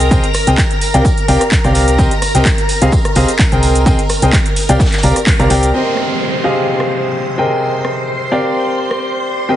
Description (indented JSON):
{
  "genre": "piano house",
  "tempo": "128 BPM",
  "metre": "4/4",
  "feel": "swing 54% on 16ths",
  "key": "unclear",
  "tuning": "A4 = 440 Hz",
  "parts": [
    { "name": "string machine, violins", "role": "sustained chords", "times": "0.0-9.6 s", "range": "Bb4 to C6", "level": "-20 LUFS", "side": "equal", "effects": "ensemble chorus, sidechain pumping" },
    { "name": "clear upright piano", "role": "riff", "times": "0.0-9.6 s", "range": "C3 to Bb5", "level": "-16 LUFS", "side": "left 1 dB", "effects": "sidechain pumping, dub echo" },
    { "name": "solid FM bass", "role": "bass", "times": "0.0-5.7 s", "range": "C2", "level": "-13 LUFS", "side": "equal", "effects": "sidechain pumping" },
    { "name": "house drum kit", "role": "drums", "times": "0.0-9.0 s", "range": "cabasa, handclaps, hi-hat, rim click", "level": "-20 LUFS", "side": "equal", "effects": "overdrive" },
    { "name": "electronic kick drum", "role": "drums", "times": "0.1-5.4 s", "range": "none", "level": "-14 LUFS", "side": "equal", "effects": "overdrive" },
    { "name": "vintage brush drum kit", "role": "drums", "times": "0.1-5.6 s", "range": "hi-hat, snare drum, tambourine", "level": "-30 LUFS", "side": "equal", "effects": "none" },
    { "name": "tambourine", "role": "percussion", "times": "0.1-5.7 s", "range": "none", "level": "-30 LUFS", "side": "right 4 dB", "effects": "none" },
    { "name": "downlifter", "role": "sound effects", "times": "5.7-9.5 s", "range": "none", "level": "-23 LUFS", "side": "right 2 dB", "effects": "none" }
  ],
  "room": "light reverb, studio reverb",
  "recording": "heavily compressed radio sound, nothing above 10.4 kHz",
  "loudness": "-11 LUFS",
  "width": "side -12 dB against mid",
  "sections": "0.0-5.7 A section; 5.7-9.6 B section",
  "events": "band accent 5.3",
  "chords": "0.0 Abmaj9/C; 0.8 Gm7/C; 2.0 Cm7; 2.7 Fm9/C; 3.6 Abmaj9/C; 4.6 Gm7/C; 5.7 Cm7; 6.4 Fm9/C; 7.4 Abmaj9/C; 8.3 Gm7/C"
}